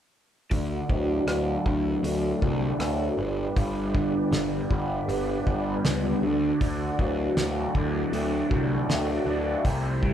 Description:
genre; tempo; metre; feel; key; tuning
psychedelic rock; 79 BPM; 4/4; straight; D mixolydian; A4 = 443 Hz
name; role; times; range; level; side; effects
bright tonewheel organ; sustained chords; 0.5-10.1 s; D4 to D5; -35 LUFS; right 3 dB; slow rotary speaker, chorus vibrato, low-pass filter
crunchy overdriven guitar; riff; 0.5-10.1 s; G2 to D4; -27 LUFS; equal; phaser, low-pass filter
fuzz picked electric bass; bass; 0.5-10.1 s; G1 to D2; -29 LUFS; equal; overdrive
cloth-damped thuddy drum kit; drums; 0.5-10.1 s; hi-hat, kick drum, rim click, snare drum; -28 LUFS; equal; none
room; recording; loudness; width
moderate large studio reverb, RT60 1.2 s; band playing live in one room; -24 LUFS; side -10 dB against mid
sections
0.5-10.1 A section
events
filter sweep 0.5-10.1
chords
0.5 D; 3.2 G; 6.2 D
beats
| 0.52 1.28 2.04 2.81 | 3.57 4.33 5.09 5.85 | 6.61 7.37 8.13 8.89 | 9.65

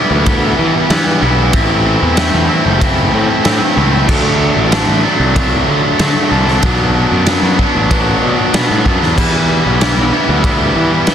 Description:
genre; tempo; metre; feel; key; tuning
quiet-loud alternative rock; 94 BPM; 4/4; straight; E minor; A4 = 436 Hz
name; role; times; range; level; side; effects
biting overdriven guitar; riff; 0.0-11.1 s; A2 to E4; -13 LUFS; equal; none
fuzz picked electric bass; bass; 0.1-11.1 s; F#1 to E3; -16 LUFS; equal; overdrive
raw garage drum kit; drums; 0.3-11.1 s; crash cymbal, kick drum, ride cymbal, snare drum; -16 LUFS; equal; none
room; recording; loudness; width
light reverb; dense, heavily limited modern master; -10 LUFS; side -9 dB against mid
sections
0.0-11.1 A section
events
none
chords
0.0 Em; 1.5 Am; 4.1 D; 6.6 Bm; 9.2 Em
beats
0.26 0.90 | 1.54 2.17 2.81 3.45 | 4.08 4.72 5.36 5.99 | 6.63 7.26 7.90 8.53 | 9.17 9.80 10.44 11.07

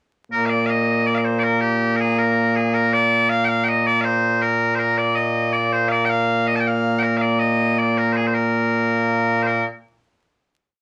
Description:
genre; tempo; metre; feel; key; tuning
scottish traditional; 107 BPM (dotted quarters); 6/8; straight; Bb major; A4 = 436 Hz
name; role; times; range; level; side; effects
loud bright bagpipes; solo; 0.3-9.6 s; Bb2 to A5; -19 LUFS; equal; none
room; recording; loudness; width
wet small room reverb, RT60 0.5 s; vinyl crackle; -19 LUFS; mono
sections
0.0-0.5 pickup bar; 0.5-9.5 A section; 9.5-10.6 final note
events
none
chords
none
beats
| 0.49 1.06 | 1.62 2.18 | 2.74 3.30 | 3.86 4.42 | 4.98 5.54 | 6.10 6.66 | 7.22 7.79 | 8.35 8.91 | 9.47

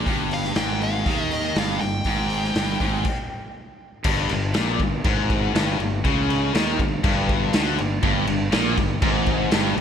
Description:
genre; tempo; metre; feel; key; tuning
hard rock; 121 BPM; 4/4; straight; unclear; A4 = 441 Hz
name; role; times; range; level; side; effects
biting overdriven guitar; riff; 0.0-3.0, 8.0-9.8 s; G2 to Eb3; -27 LUFS; right 11 dB; none
tight distorted guitar; riff; 0.0-9.8 s; G2 to Eb3; -26 LUFS; left 10 dB; distortion
fuzz fingered electric bass; bass; 0.0-9.8 s; G1 to Eb2; -27 LUFS; equal; overdrive
raw garage drum kit; drums; 0.1-9.8 s; crash cymbal, hi-hat, kick drum, snare drum; -24 LUFS; equal; none
nasal lead guitar with a parked wah; melody; 0.3-3.5 s; Eb5 to G5; -29 LUFS; equal; overdrive, digital delay
raw garage guitar; riff; 4.1-9.8 s; G2 to Eb3; -27 LUFS; right 2 dB; overdrive
room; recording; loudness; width
light reverb, small room reverb; bright 1980s-style digital production; -20 LUFS; side -8 dB against mid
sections
0.0-4.1 A section; 4.1-9.8 B section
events
stop 3.1-4.1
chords
0.0 N.C.; 4.1 Gm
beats
| 0.07 0.57 1.06 1.56 | 2.06 2.56 3.06 3.56 | 4.05 4.55 5.05 5.55 | 6.04 6.54 7.04 7.54 | 8.03 8.53 9.03 9.52

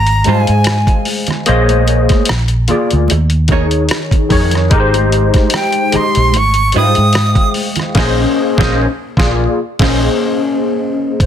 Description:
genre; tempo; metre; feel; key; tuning
R&B, neo-soul; 74 BPM; 4/4; swing 54% on 16ths; Bb dorian; A4 = 440 Hz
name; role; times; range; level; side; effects
breathy bright jazz flute; melody; 0.0-7.5 s; G5 to Eb6; -16 LUFS; right 1 dB; tape echo
vintage muted fingered electric bass; bass; 0.0-11.3 s; Ab1 to Ab2; -14 LUFS; equal; none
boom bap sampler-style drum kit; drums; 0.1-11.3 s; crash cymbal, hi-hat, kick drum, rim click, snare drum; -15 LUFS; equal; none
overdriven tine electric piano; accompaniment; 0.2-11.3 s; Db3 to Ab5; -15 LUFS; left 3 dB; ensemble chorus
vintage hollow-body jazz guitar; second line; 0.3-10.1 s; G3 to Db5; -20 LUFS; right 8 dB; none
congas; percussion; 0.6-7.9 s; none; -25 LUFS; right 8 dB; none
room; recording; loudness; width
light reverb; dense, heavily limited modern master; -10 LUFS; side -9 dB against mid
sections
0.0-11.2 A section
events
band accent 8.0-11.2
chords
0.0 Ab6; 1.5 Bbm11; 2.3 Bb7; 3.1 Eb7sus4; 4.7 Abmaj7; 6.3 Dbmaj9#11/Ab; 8.0 Bbm11; 8.8 Bb7; 9.6 Bbm11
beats
0.66 | 1.47 2.28 3.09 3.90 | 4.71 5.52 6.33 7.14 | 7.96 8.77 9.58 10.39 | 11.20

